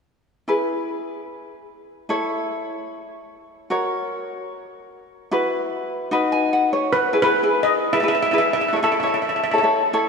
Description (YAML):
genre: calypso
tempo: 149 BPM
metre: 4/4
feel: straight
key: E major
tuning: A4 = 440 Hz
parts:
  - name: ukulele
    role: accompaniment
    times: 0.5-10.1 s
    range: D#4 to G#5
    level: -21 LUFS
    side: left 1 dB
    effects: none
  - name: steel pan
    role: melody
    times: 6.9-9.7 s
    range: B4 to E5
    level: -19 LUFS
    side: equal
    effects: none
room: wet lush hall reverb, RT60 3.4 s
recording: dreamy mix soaked in reverb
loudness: -18 LUFS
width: side -5 dB against mid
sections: 0.5-6.9 A section; 6.9-10.1 B section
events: ukulele fill 6.1-6.9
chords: 0.5 E; 2.1 A; 3.7 F#; 5.3 Bsus4; 6.1 B; 6.9 E; 8.5 A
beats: | 0.48 0.89 1.29 1.69 | 2.09 2.50 2.90 3.30 | 3.70 4.11 4.51 4.91 | 5.31 5.72 6.12 6.52 | 6.92 7.33 7.73 8.13 | 8.53 8.93 9.34 9.74